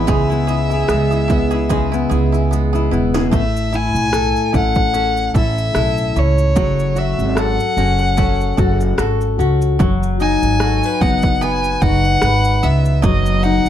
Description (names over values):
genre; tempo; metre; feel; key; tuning
acoustic pop; 74 BPM; 4/4; swing 55% on 16ths; unclear; A4 = 440 Hz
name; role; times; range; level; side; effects
warm violin; melody; 0.0-13.7 s; C#5 to G#5; -20 LUFS; left 1 dB; plate reverb
fingerpicked plugged-in steel-string acoustic guitar; accompaniment; 0.0-13.7 s; A2 to B4; -19 LUFS; left 4 dB; none
bluegrass banjo; arpeggios; 0.0-13.7 s; F#3 to A4; -28 LUFS; right 5 dB; none
upright bass; bass; 0.0-13.7 s; E1 to C#2; -18 LUFS; right 1 dB; none
80s electronic pad drums; drums; 0.1-13.7 s; kick drum, rim click, shaker, snare drum; -19 LUFS; right 1 dB; overdrive
room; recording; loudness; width
light reverb; dark, warm production; -14 LUFS; side -10 dB against mid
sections
0.0-3.3 A section; 3.3-13.7 B section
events
drum fill 2.5-3.3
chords
0.1 C#m7; 3.3 A; 6.6 F#m; 9.8 B/F#